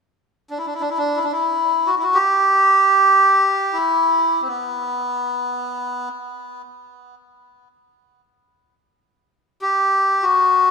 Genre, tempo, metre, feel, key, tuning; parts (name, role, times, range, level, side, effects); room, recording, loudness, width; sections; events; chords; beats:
world meditative, free-time meditation music; free time; E minor; A4 = 438 Hz
melodica; solo; 0.5-10.7 s; B3 to G4; -16 LUFS; equal; ping-pong delay
wet concert hall reverb, RT60 2.1 s; -15 LUFS; side -6 dB against mid
0.0-10.7 A section
free time